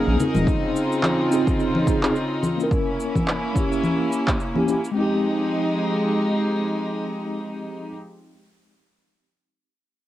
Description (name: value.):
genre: sunset chillout.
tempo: 107 BPM.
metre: 4/4.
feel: swing 58% on 16ths.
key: F minor.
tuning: A4 = 441 Hz.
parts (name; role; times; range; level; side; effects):
mellow tine electric piano; accompaniment; 0.0-8.0 s; Ab3 to Bb4; -24 LUFS; equal; medium stereo tremolo, auto-pan, cassette tape, analog delay.
rich chamber string section; sustained chords; 0.0-7.9 s; Db3 to Bb4; -24 LUFS; equal; cassette tape.
round analog bass; bass; 0.1-0.5 s; Eb1 to Bb1; -21 LUFS; equal; none.
electronic cabasa, congas and handclaps; drums; 0.2-4.9 s; none; -25 LUFS; left 1 dB; overdrive, cassette tape.
electronic kick drum; drums; 0.5-4.4 s; none; -24 LUFS; equal; overdrive, cassette tape.
room: wet booth ambience, RT60 0.2 s.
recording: home recording on cassette.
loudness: -20 LUFS.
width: side -13 dB against mid.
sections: 0.0-5.0 A section; 5.0-7.2 B section.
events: none.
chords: 0.5 Dbmaj9; 2.7 Bbdim7; 5.0 Fm9.